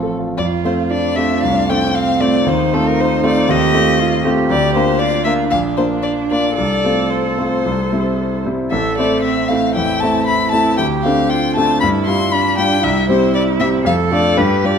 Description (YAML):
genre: quick classical-period movement for piano trio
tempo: 116 BPM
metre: 4/4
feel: rubato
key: F major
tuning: A4 = 438 Hz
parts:
  - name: rich violin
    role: melody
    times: 0.0-14.8 s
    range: A4 to C6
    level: -18 LUFS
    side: left 5 dB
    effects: none
  - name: rich cello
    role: second line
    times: 0.0-14.8 s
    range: F3 to A4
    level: -21 LUFS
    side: right 6 dB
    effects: none
  - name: clear concert grand piano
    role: accompaniment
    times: 0.0-14.8 s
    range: A1 to A4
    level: -16 LUFS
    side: equal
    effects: none
room: moderate scoring stage reverb, RT60 1.6 s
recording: minimal, uncompressed stereo recording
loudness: -13 LUFS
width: side -7 dB against mid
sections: 0.4-14.8 A section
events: none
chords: 0.4 F; 2.5 F7/Eb; 4.5 Bb/D; 5.5 Bb; 6.6 F/C; 7.6 C; 8.7 Am; 10.8 Dm7; 11.8 G5; 12.8 C; 13.9 Dm/F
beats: | 0.39 0.91 1.43 1.95 | 2.46 2.98 3.48 3.99 | 4.50 5.01 5.52 6.05 | 6.58 7.11 7.64 8.18 | 8.71 9.24 9.76 10.27 | 10.79 11.31 11.82 12.33 | 12.83 13.34 13.86 14.38